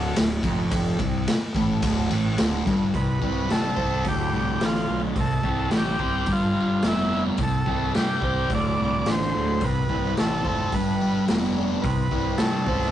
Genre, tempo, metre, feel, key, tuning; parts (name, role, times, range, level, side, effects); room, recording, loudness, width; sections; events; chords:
psychedelic rock; 108 BPM; 4/4; straight; A4 = 435 Hz
fuzz guitar; riff; 0.0-12.9 s; D2 to C5; -25 LUFS; equal; distortion, phaser
fuzz fingered electric bass; bass; 0.0-12.9 s; D1 to G2; -29 LUFS; equal; overdrive
raw garage drum kit; drums; 0.2-12.9 s; hi-hat, kick drum, ride cymbal, snare drum; -27 LUFS; equal
combo organ; melody; 3.0-12.9 s; E4 to D5; -28 LUFS; equal
moderate small room reverb, RT60 0.5 s; rough rehearsal-room recording, warm saturation, nothing above 10.6 kHz; -21 LUFS; side -11 dB against mid
0.0-2.9 A section; 2.9-12.9 B section
0.0 Dm; 2.9 C; 4.1 D5; 5.2 C; 6.3 G; 7.4 C; 8.5 D5; 9.6 C; 10.7 G; 11.8 C